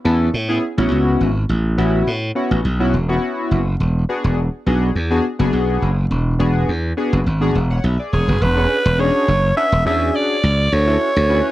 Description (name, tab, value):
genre	funk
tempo	104 BPM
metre	4/4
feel	straight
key	unclear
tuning	A4 = 440 Hz
part	chorused polysynth	accompaniment	0.0-11.5 s	B3 to F#5	-20 LUFS	left 2 dB	none
part	slap bass	bass	0.1-11.4 s	E1 to A2	-17 LUFS	equal	none
part	raspy alto saxophone	melody	8.1-11.5 s	G#4 to E5	-18 LUFS	right 1 dB	slapback echo
room	little or no reverb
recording	dry, close 1970s-style studio recording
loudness	-15 LUFS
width	side -15 dB against mid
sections	0.0-8.4 A section; 8.4-11.5 B section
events	none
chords	0.0 A69; 3.8 E9; 10.7 Dmaj7